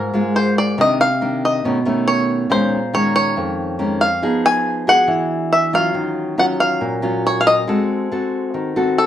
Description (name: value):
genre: bossa nova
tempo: 139 BPM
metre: 4/4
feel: straight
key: unclear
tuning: A4 = 439 Hz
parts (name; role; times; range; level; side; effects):
- bluegrass banjo; melody; 0.0-9.1 s; A4 to Ab5; -17 LUFS; equal; none
- nylon-string guitar; accompaniment; 0.0-9.1 s; F2 to A4; -18 LUFS; equal; none
room: wet studio reverb, RT60 0.7 s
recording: band playing live in one room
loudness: -15 LUFS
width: side -11 dB against mid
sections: 0.0-9.1 A section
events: none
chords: 0.0 Db6 (rootless); 0.8 Cm9; 1.6 Cb9; 2.5 Bbm11; 4.2 Fm7b5; 5.1 E9; 6.0 Ebm9; 7.7 Ab7b9